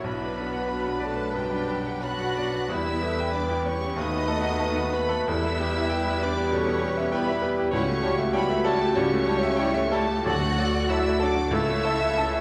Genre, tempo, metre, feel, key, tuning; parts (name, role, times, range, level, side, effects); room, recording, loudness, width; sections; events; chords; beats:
classical; 84-100 BPM; 4/4; rubato; A4 = 440 Hz
clear baby grand piano; melody; 0.0-12.4 s; B1 to B5; -30 LUFS; equal
warm chamber violin section; melody; 0.0-12.4 s; G5 to F#6; -38 LUFS; equal
clear clarinet; second line; 0.0-12.3 s; D4 to A4; -39 LUFS; equal
clear oboe; second line; 0.0-12.3 s; B4 to E5; -40 LUFS; equal
dark studio violin section; second line; 0.0-12.4 s; G4 to F#5; -38 LUFS; equal
mellow flute section; second line; 0.0-12.2 s; A5 to B5; -41 LUFS; equal
mellow bassoon; accompaniment; 0.0-12.3 s; F#3 to A3; -38 LUFS; equal
rich chamber viola section; accompaniment; 0.0-12.4 s; F#3 to C#5; -39 LUFS; equal
mellow French horn section; sustained chords; 0.0-12.4 s; C#4 to B4; -33 LUFS; equal
rich chamber double bass section; bass; 0.0-12.4 s; B1 to E2; -35 LUFS; equal
rich symphonic cello section; bass; 0.0-12.4 s; G3 to F#4; -36 LUFS; equal
timpani; percussion; 10.3-11.2 s; D3; -39 LUFS; equal
wet scoring stage reverb, RT60 1.6 s; -25 LUFS; mono
0.0-12.4 A section
0.1 Bm; 2.7 Em; 4.0 B7/D#; 5.3 Em; 7.7 A7/C#; 10.3 D; 11.5 A/C#
| 0.06 0.71 1.34 2.03 | 2.69 3.33 3.97 4.60 | 5.28 5.91 6.52 7.13 | 7.73 8.34 8.97 9.59 | 10.27 10.91 11.54 12.19